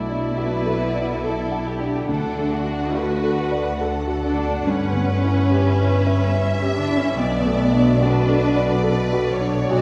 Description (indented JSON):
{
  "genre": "cinematic",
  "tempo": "70 BPM",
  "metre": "3/4",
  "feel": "rubato",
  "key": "B minor",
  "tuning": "A4 = 440 Hz",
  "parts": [
    { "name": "warm studio violin section", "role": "melody", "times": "0.0-9.8 s", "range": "D5 to F#5", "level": "-35 LUFS", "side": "equal", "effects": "none" },
    { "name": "rich studio viola section", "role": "accompaniment", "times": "0.0-9.8 s", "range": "B3 to F#4", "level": "-26 LUFS", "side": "equal", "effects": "none" },
    { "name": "warm concert grand piano", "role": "accompaniment", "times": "0.0-9.8 s", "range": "B1 to F#5", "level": "-26 LUFS", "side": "equal", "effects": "none" },
    { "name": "concert harp", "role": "arpeggios", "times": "0.0-9.8 s", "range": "G2 to F#5", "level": "-31 LUFS", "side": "equal", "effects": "none" },
    { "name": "warm chamber double bass section", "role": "bass", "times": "0.0-9.8 s", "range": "G1 to D2", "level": "-29 LUFS", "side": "equal", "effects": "none" },
    { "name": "warm studio cello section", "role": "bass", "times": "0.0-9.8 s", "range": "G2 to D3", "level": "-30 LUFS", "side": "equal", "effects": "none" },
    { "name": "rich studio violin section", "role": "second line", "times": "0.4-9.8 s", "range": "F#4 to E5", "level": "-31 LUFS", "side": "equal", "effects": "none" }
  ],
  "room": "wet scoring stage reverb, RT60 1.7 s",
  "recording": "heard from further back in the room",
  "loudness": "-20 LUFS",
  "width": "mono",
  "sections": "0.0-9.8 A section",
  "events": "none",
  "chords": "0.0 Bm7; 2.1 D; 4.7 G6; 7.2 Bm7"
}